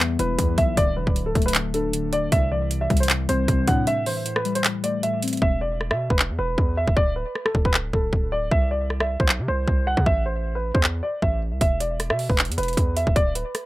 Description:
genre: hip hop, trap.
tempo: 155 BPM.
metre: 4/4.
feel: half-time.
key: E minor.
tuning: A4 = 444 Hz.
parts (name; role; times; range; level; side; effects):
muted felt-like synth keys; accompaniment; 0.0-5.4 s; A2 to E5; -26 LUFS; left 4 dB; chorus, low-pass filter.
hard-hitting 808-style bass; bass; 0.0-13.4 s; D1 to C3; -26 LUFS; equal; none.
trap drum kit; drums; 0.0-13.6 s; handclaps, hi-hat, kick drum, rim click; -22 LUFS; equal; none.
dark grand piano; melody; 0.2-13.6 s; A4 to F#5; -25 LUFS; right 1 dB; low-pass filter, tape echo.
room: light reverb.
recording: none.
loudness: -20 LUFS.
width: side -17 dB against mid.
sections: 0.0-5.4 A section; 5.4-13.7 B section.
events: break 3.9-5.4; hi-hats muted 5.4-11.6.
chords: 0.0 Em; 0.8 D; 2.3 Cadd9; 3.9 Am7; 5.4 E5; 7.0 D5; 8.5 D7(no3) (rootless); 10.1 Am; 11.6 E5.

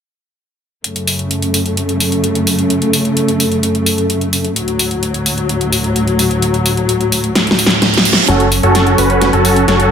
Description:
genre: EDM, festival progressive house.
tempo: 129 BPM.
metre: 4/4.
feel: straight.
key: F# minor.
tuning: A4 = 440 Hz.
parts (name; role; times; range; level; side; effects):
dark studio string section; sustained chords; 0.8-9.9 s; D2 to A4; -15 LUFS; left 1 dB; stereo widening, low-pass filter.
big-room dance drum kit; drums; 0.8-9.9 s; hi-hat, snare drum; -16 LUFS; equal; none.
reverse cymbal and riser; sound effects; 7.6-9.9 s; none; -19 LUFS; right 6 dB; none.
big supersaw lead; riff; 8.3-9.9 s; C#4 to B4; -12 LUFS; right 1 dB; low-pass filter, tape echo.
fat analog bass; bass; 8.3-9.9 s; F#1; -15 LUFS; equal; tube saturation.
room: light reverb, digital ambience.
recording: none.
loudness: -11 LUFS.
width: side -7 dB against mid.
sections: 0.8-8.3 A section; 8.3-9.9 B section.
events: filter sweep on string section 0.8-8.3; drum fill 7.4-8.3, 8.3-9.9; reverse cymbal 7.6-8.3; build-up 8.3-9.9; filter sweep on supersaw synth 8.3-9.9.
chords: 0.8 F#m; 4.6 D; 8.3 F#m.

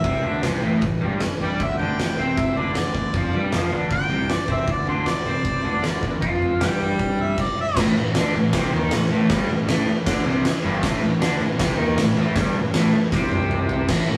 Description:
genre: garage rock duo or trio.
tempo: 156 BPM.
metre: 4/4.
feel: straight.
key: A minor.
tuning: A4 = 441 Hz.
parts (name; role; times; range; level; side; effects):
clear harmonica; melody; 0.0-7.8 s; C5 to G5; -29 LUFS; equal; overdrive.
fuzz guitar; riff; 0.0-14.2 s; G2 to C5; -26 LUFS; equal; distortion.
fuzz picked electric bass; bass; 0.0-14.2 s; G1 to C3; -29 LUFS; equal; overdrive.
oversized low-tuned drum kit; drums; 0.0-14.0 s; crash cymbal, kick drum, snare drum, toms; -26 LUFS; equal; none.
room: wet stone room reverb, RT60 1.2 s.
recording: rough rehearsal-room recording, small room ambience.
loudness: -22 LUFS.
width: mono.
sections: 0.0-7.8 A section; 7.8-13.9 B section.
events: drum fill 13.1-13.9.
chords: 0.0 Am; 1.6 Csus2; 7.8 Am.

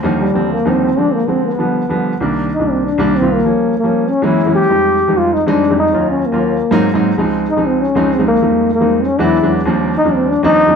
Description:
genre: jazz.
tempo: 193 BPM.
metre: 4/4.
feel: straight.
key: C minor.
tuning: A4 = 436 Hz.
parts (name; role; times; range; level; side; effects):
warm grand piano; accompaniment; 0.0-10.8 s; C2 to F4; -15 LUFS; right 2 dB; none.
breathy trombone; melody; 0.2-10.8 s; G3 to G4; -14 LUFS; left 2 dB; none.
room: wet studio ambience, RT60 0.5 s.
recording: heard from further back in the room.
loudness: -12 LUFS.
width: side -6 dB against mid.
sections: 0.0-2.2 A section; 2.2-10.8 B section.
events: none.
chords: 0.0 Ebmaj13; 1.0 Dm7b5; 1.6 G7; 2.2 Cm9; 3.5 Gm7b5; 4.1 F#9; 4.7 Fm9; 5.9 Ebm9; 6.6 Ab9; 7.2 Dbmaj9; 8.4 Fm7; 9.0 E9; 9.7 Ebmaj13.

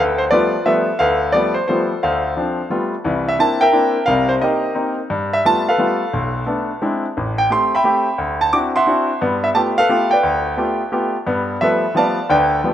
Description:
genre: jazz.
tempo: 175 BPM.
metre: 3/4.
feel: swing 64% on 8ths.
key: G mixolydian.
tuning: A4 = 440 Hz.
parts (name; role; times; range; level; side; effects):
bright concert grand piano; solo; 0.0-12.7 s; A1 to D6; -15 LUFS; equal; none.
room: moderate plate reverb, RT60 2.6 s.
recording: rough home demo mix.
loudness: -15 LUFS.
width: side -10 dB against mid.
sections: 0.0-11.3 A section; 11.3-12.7 A section.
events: none.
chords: 0.0 G9; 2.0 Dm7; 2.7 G9; 3.0 C9; 4.1 Cm7; 5.1 G9; 6.1 Bm7; 6.8 Eaug7; 7.2 Am7; 8.2 D9; 9.2 G9.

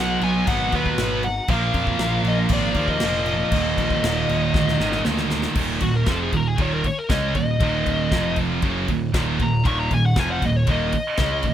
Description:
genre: heavy metal.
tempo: 118 BPM.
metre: 4/4.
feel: straight.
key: Eb minor.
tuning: A4 = 435 Hz.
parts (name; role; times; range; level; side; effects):
high-gain lead guitar; melody; 0.0-11.5 s; Gb4 to Db6; -25 LUFS; left 3 dB; distortion.
clear symphonic string section; sustained chords; 0.0-5.5 s; Bb3 to Bb5; -35 LUFS; left 2 dB; none.
scooped high-gain guitar; riff; 0.0-11.5 s; Eb2 to Db4; -28 LUFS; left 13 dB; distortion.
scooped high-gain guitar; riff; 0.0-11.5 s; Eb2 to Db4; -23 LUFS; right 6 dB; distortion.
fuzz picked electric bass; bass; 0.0-11.5 s; Eb1 to F2; -27 LUFS; left 1 dB; overdrive.
modern studio drum kit; drums; 0.2-11.5 s; crash cymbal, kick drum, ride cymbal, snare drum; -26 LUFS; left 1 dB; none.
room: little or no reverb.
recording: rough home demo mix.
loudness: -19 LUFS.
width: side -10 dB against mid.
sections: 0.0-5.6 A section; 5.6-11.5 B section.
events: drum fill 4.5-5.6; lead electric guitar solo 5.6-11.5.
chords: 0.0 B; 1.5 Bb5; 3.5 Ebm; 5.6 Eb5; 8.1 F5; 8.6 Ebm.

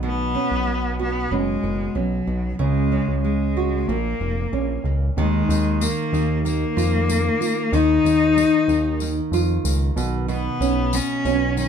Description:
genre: acoustic pop.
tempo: 94 BPM.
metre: 4/4.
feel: straight.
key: Eb minor.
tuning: A4 = 439 Hz.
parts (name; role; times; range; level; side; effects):
rich cello; melody; 0.0-11.7 s; F#3 to Eb4; -22 LUFS; left 4 dB; none.
nylon-string guitar; accompaniment; 0.0-11.7 s; Bb2 to F#4; -24 LUFS; right 5 dB; none.
fat analog bass; bass; 0.0-11.7 s; F1 to F2; -23 LUFS; equal; none.
tambourine; percussion; 5.5-11.7 s; none; -33 LUFS; left 6 dB; none.
room: wet studio reverb, RT60 0.5 s.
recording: heard from further back in the room.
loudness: -19 LUFS.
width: side -7 dB against mid.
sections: 0.0-5.2 A section; 5.2-11.7 B section.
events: none.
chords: 0.0 Bsus2; 2.6 Dbsus4; 3.9 Bbm; 5.2 Ebsus2; 10.0 Badd9.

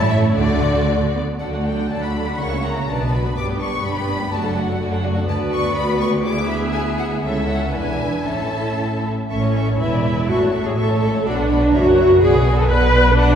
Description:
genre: quick classical-period movement for string orchestra.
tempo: 112-127 BPM.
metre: 2/4.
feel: rubato.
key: D major, A major from 5.3 s.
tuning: A4 = 440 Hz.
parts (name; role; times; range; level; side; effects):
rich studio violin section; melody; 0.0-13.4 s; D5 to D6; -28 LUFS; left 3 dB; none.
rich chamber violin section; second line; 0.0-13.4 s; E4 to F#5; -25 LUFS; left 2 dB; none.
warm chamber viola section; accompaniment; 0.0-13.4 s; F#3 to B4; -20 LUFS; equal; none.
dark chamber double bass section; bass; 0.0-13.4 s; E1 to D2; -22 LUFS; right 1 dB; none.
warm chamber cello section; bass; 0.0-13.4 s; C#2 to D3; -24 LUFS; right 1 dB; none.
room: wet recital hall reverb, RT60 1.8 s.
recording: recorded in a church or concert hall.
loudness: -16 LUFS.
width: side -8 dB against mid.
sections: 0.0-1.4 A section; 1.4-9.3 A section; 9.3-13.4 B section.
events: none.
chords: 0.4 D; 2.4 F#7/C#; 2.9 Bm; 3.4 G; 4.3 D/F#; 5.3 Bm/D; 6.2 E7/D; 7.2 A/C#; 7.7 E7; 8.3 A; 9.8 E7; 10.3 A; 11.3 Bm; 11.7 F#7; 12.2 Bm.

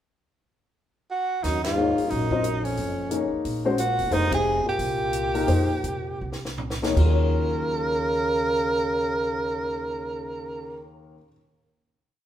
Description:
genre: modal jazz.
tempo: 151-180 BPM.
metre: 4/4.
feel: swing 62% on 8ths.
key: Eb dorian.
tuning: A4 = 440 Hz.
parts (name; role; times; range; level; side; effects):
breathy tenor saxophone; melody; 1.1-10.9 s; Db4 to Bb4; -26 LUFS; right 2 dB; none.
breathy trombone; second line; 1.4-10.9 s; F2 to Db3; -30 LUFS; left 3 dB; none.
upright bass; bass; 1.4-11.2 s; Fb1 to C3; -27 LUFS; equal; none.
compact cocktail drum kit; drums; 1.4-7.1 s; crash cymbal, hi-hat, kick drum, ride cymbal, snare drum, toms; -35 LUFS; equal; none.
warm concert grand piano; accompaniment; 1.8-11.4 s; Eb2 to Eb5; -28 LUFS; left 4 dB; none.
room: moderate large studio reverb, RT60 1.5 s.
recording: band playing live in one room.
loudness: -22 LUFS.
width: side -11 dB against mid.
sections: 0.1-1.4 pickup bar; 1.4-7.0 A section; 7.0-10.1 final chord.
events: band accent 1.6, 4.3; slowing down 4.1-7.0; drum fill 6.2-7.0.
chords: 0.1 N.C.; 1.4 Ebm11; 4.1 Fm11; 7.0 Ebm11.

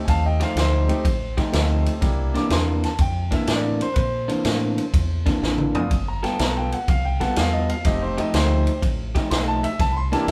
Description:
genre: electric blues shuffle.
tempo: 124 BPM.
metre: 4/4.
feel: swing 68% on 8ths.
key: unclear.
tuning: A4 = 442 Hz.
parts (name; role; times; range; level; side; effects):
clear concert grand piano; accompaniment; 0.0-10.3 s; A3 to Eb6; -29 LUFS; equal; none.
deep dub fingered electric bass; bass; 0.1-10.3 s; F1 to Bb2; -26 LUFS; equal; none.
swinging big-band drum kit; drums; 0.1-10.3 s; kick drum, ride cymbal, snare drum, toms; -26 LUFS; equal; none.
electric guitar through a small old amp; riff; 0.4-10.3 s; C3 to A4; -28 LUFS; equal; none.
room: moderate large studio reverb, RT60 1.5 s.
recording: band playing live in one room.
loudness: -22 LUFS.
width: mono.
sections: 0.0-10.3 A section.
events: drum fill 5.4-5.9.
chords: 0.0 F9; 2.0 C9; 5.9 G9; 7.9 F9; 9.8 C9.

